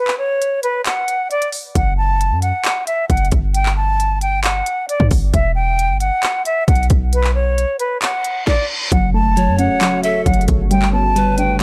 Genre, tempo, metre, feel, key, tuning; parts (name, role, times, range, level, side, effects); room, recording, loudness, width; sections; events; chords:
hip hop, trap; 134 BPM; 4/4; half-time; A4 = 440 Hz
silver concert flute; melody; 0.0-11.6 s; B4 to A5; -21 LUFS; equal; analog delay
trap drum kit; drums; 0.1-11.6 s; handclaps, hi-hat, kick drum, snare drum; -22 LUFS; equal
hard-hitting 808-style bass; bass; 1.8-11.6 s; E1 to G2; -19 LUFS; equal
reverse cymbal and impact; sound effects; 8.2-10.7 s; -29 LUFS; equal
soft round pluck; accompaniment; 8.9-11.6 s; F#3 to D4; -21 LUFS; equal; chorus
deep dark ambient pad; sustained chords; 9.5-11.6 s; C#3 to C#5; -29 LUFS; equal; chorus, built-in reverb
breathy bright large pan pipes; second line; 9.4-11.6 s; A4 to C#5; -27 LUFS; equal; analog delay
little or no reverb; dry, gritty hardware recording; -17 LUFS; mono
0.0-8.9 A section; 8.9-11.6 B section
break 0.0-1.8; reverse cymbal 8.2-8.9; impact 8.9-10.7
0.0 N.C.; 1.8 F#m; 3.5 Dadd11/G (rootless); 5.3 Emadd9; 7.1 Bsus2; 8.9 F#m; 10.7 Gmaj7